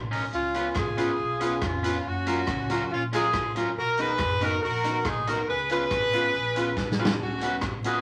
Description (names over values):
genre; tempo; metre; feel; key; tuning
ska; 140 BPM; 4/4; straight; unclear; A4 = 437 Hz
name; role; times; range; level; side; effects
upright bass; bass; 0.0-8.0 s; E#1 to C#2; -38 LUFS; equal; none
electric guitar at the edge of break-up; accompaniment; 0.1-8.0 s; C#4 to B4; -34 LUFS; equal; none
swinging big-band drum kit; drums; 0.1-7.9 s; hi-hat, kick drum, rim click, snare drum; -34 LUFS; equal; tape echo
warm horn section; melody; 0.3-8.0 s; C#4 to B4; -29 LUFS; equal; none
dark upright piano; stabs; 0.6-8.0 s; F#3 to F#4; -34 LUFS; equal; none
group handclap; percussion; 0.8-7.7 s; none; -46 LUFS; equal; none
room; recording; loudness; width
wet studio reverb, RT60 0.6 s; vinyl crackle; -26 LUFS; mono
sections
0.0-8.0 A section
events
drum fill 6.8-7.2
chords
0.3 C#7; 2.0 F#maj7; 3.8 Bmaj7; 5.5 C#7; 7.2 C#7sus4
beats
| 0.32 0.75 1.18 1.61 | 2.04 2.47 2.90 3.33 | 3.76 4.19 4.62 5.05 | 5.48 5.91 6.34 6.77 | 7.20 7.62